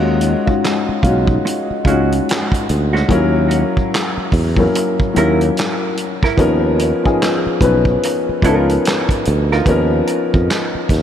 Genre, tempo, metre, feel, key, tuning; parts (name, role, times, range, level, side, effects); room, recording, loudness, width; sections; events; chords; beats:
R&B, neo-soul; 73 BPM; 4/4; swing 60% on 16ths; Eb minor; A4 = 440 Hz
dark upright piano; accompaniment; 0.0-11.0 s; E#3 to B4; -16 LUFS; left 2 dB
sustaining fretless electric bass; bass; 0.0-11.0 s; Cb2 to F2; -17 LUFS; right 1 dB
warm soul drum kit; drums; 0.2-11.0 s; handclaps, hi-hat, kick drum, snare drum; -20 LUFS; right 1 dB
vintage hollow-body jazz guitar; second line; 1.5-9.6 s; Ab3 to Bb4; -25 LUFS; right 5 dB; analog delay
moderate cathedral reverb, RT60 6.0 s; dreamy mix soaked in reverb; -13 LUFS; side -9 dB against mid
0.0-11.0 A section
0.0 Ebm11; 3.1 Gb7/Eb; 6.4 Bmaj9#11; 9.7 Db13/Eb
0.62 1.45 2.27 | 3.09 3.91 4.74 5.56 | 6.38 7.20 8.02 8.85 | 9.67 10.49